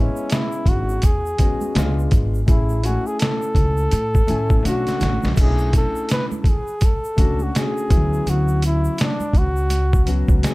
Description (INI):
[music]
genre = hip hop, jazz-hop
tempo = 83 BPM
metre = 4/4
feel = swing 60% on 16ths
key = B dorian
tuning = A4 = 440 Hz
[part]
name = breathy flugelhorn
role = melody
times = 0.0-10.5 s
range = C#4 to B4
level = -25 LUFS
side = equal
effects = tape echo
[part]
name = dark grand piano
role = accompaniment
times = 0.0-10.5 s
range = E3 to G#5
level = -26 LUFS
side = left 3 dB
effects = plate reverb
[part]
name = upright bass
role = bass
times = 0.0-10.4 s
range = G#1 to A2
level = -20 LUFS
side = equal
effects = none
[part]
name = egg shaker and congas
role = percussion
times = 0.2-10.5 s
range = none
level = -34 LUFS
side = right 4 dB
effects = none
[part]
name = trip hop sampler-style drum kit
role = drums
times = 0.3-10.5 s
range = crash cymbal, hi-hat, kick drum, snare drum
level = -18 LUFS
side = equal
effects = none
[sound]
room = little or no reverb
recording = dark, warm production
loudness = -17 LUFS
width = side -21 dB against mid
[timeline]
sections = 0.0-5.4 A section; 5.4-10.5 B section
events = drum fill 4.7-5.4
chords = 0.0 Amaj9 (rootless); 1.8 C#7b9; 2.5 Amaj7; 4.7 Bm9; 5.4 Bm11; 7.9 Dmaj13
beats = 0.31 1.04 1.76 | 2.48 3.21 3.93 4.65 | 5.37 6.10 6.82 7.54 | 8.27 8.99 9.71 10.44